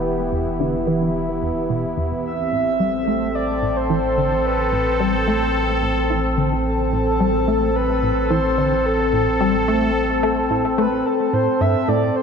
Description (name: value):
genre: ambient, sequencer-driven space music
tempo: 109 BPM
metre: 4/4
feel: straight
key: unclear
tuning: A4 = 440 Hz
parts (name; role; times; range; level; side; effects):
- sweeping resonant pad; sustained chords; 0.0-12.2 s; E3 to A4; -21 LUFS; equal; chorus
- warm sub bass; bass; 0.0-11.0 s; E1 to A1; -27 LUFS; equal; none
- tight sequenced synth; riff; 0.3-12.1 s; E2 to A3; -24 LUFS; equal; chorus, ping-pong delay
- breathy flute-like synth lead; melody; 2.2-12.2 s; A4 to E5; -22 LUFS; equal; tremolo, lush chorus, vintage 12-bit sampler grit, ping-pong delay
room: wet plate reverb, RT60 3.1 s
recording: none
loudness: -17 LUFS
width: side -6 dB against mid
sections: 0.0-11.1 A section; 11.1-12.2 B section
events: filter sweep on synth arpeggio sound 0.0-11.1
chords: 0.0 Em; 2.2 Am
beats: | 0.05 0.60 1.15 1.70 | 2.25 2.80 3.35 3.90 | 4.45 5.00 5.55 6.10 | 6.65 7.20 7.75 8.30 | 8.86 9.41 9.96 10.51 | 11.06 11.61 12.16